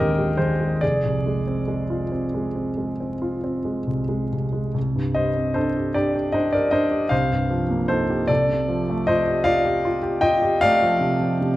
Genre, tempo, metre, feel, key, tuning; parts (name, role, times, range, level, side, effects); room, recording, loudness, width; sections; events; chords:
classical, impressionist solo piano; 45-52 BPM (dotted quarters); 9/8; rubato; A4 = 440 Hz
warm concert grand piano; solo; 0.0-11.6 s; F1 to G5; -19 LUFS; equal
wet recital hall reverb, RT60 1.3 s; dark, warm production, vinyl crackle; -20 LUFS; side -16 dB against mid
0.0-11.6 A section
0.0 Abmaj7#11; 0.8 Fm6; 4.8 Csus2; 7.1 Eb69/C; 8.3 F69/C